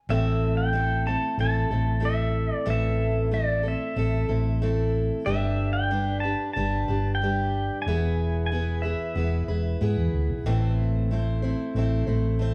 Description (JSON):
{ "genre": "folk rock and heartland rock", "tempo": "93 BPM", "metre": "4/4", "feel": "straight", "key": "A minor", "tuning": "A4 = 440 Hz", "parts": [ { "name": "pedal steel guitar", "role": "melody", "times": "0.1-9.8 s", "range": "D5 to A5", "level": "-32 LUFS", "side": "equal", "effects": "none" }, { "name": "picked steel-string acoustic guitar", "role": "accompaniment", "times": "0.1-12.5 s", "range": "A2 to C5", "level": "-31 LUFS", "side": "equal", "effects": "none" }, { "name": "hollow-body short-scale fingered electric bass", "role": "bass", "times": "0.1-12.5 s", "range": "E1 to G#2", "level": "-28 LUFS", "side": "equal", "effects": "none" } ], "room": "moderate large studio reverb, RT60 1.1 s", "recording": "band playing live in one room", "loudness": "-25 LUFS", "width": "mono", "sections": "0.1-12.5 A section", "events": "none", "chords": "0.1 Am; 5.3 G; 7.9 E; 10.4 Am" }